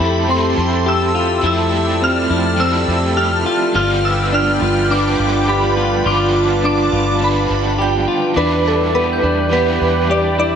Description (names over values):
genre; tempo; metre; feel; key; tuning
dream pop; 104 BPM; 4/4; straight; unclear; A4 = 440 Hz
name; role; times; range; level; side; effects
shimmering bell with halo; melody; 0.0-10.6 s; A4 to F6; -19 LUFS; right 1 dB; ensemble chorus, digital delay
crunchy overdriven guitar; accompaniment; 0.0-10.6 s; G2 to B4; -22 LUFS; right 4 dB; tremolo, analog chorus
warm analog pad; sustained chords; 0.0-10.6 s; F4 to B5; -21 LUFS; right 1 dB; chorus
clean electric guitar; arpeggios; 0.0-10.6 s; B3 to G4; -20 LUFS; left 3 dB; wide subtle chorus, digital delay
vintage muted fingered electric bass; bass; 0.0-10.6 s; G1 to F2; -20 LUFS; equal; none
glockenspiel with soft plastic mallets; texture; 1.1-2.6, 8.4-10.5 s; C6 to G6; -29 LUFS; left 1 dB; digital delay
room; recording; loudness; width
wet concert hall reverb, RT60 2.0 s; none; -13 LUFS; side -7 dB against mid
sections
0.0-8.4 A section; 8.4-10.6 B section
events
none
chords
0.0 Fmaj7; 3.7 G7; 8.4 Em7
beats
0.28 0.86 | 1.44 2.02 2.59 3.17 | 3.75 4.32 4.90 5.48 | 6.05 6.63 7.21 7.79 | 8.36 8.94 9.52 10.09